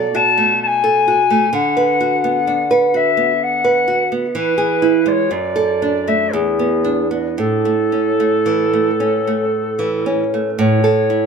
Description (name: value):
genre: romantic duo for recorder and classical guitar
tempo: 55-66 BPM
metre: 3/4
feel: rubato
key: A major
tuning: A4 = 436 Hz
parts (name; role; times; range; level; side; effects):
- alto recorder; melody; 0.0-11.3 s; G#4 to A5; -17 LUFS; left 5 dB; plate reverb, tape echo
- nylon-string guitar; accompaniment; 0.0-11.3 s; E2 to B4; -17 LUFS; right 4 dB; none
room: light reverb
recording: none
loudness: -14 LUFS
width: side -6 dB against mid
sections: 0.0-10.6 A section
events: none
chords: 0.0 B7(no3); 1.5 Bm/D; 4.4 E; 5.3 D/F#; 6.3 E7; 7.4 A; 10.6 A5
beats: 0.62 | 1.54 2.48 3.42 | 4.35 5.31 6.33 | 7.38 8.47 9.55 | 10.60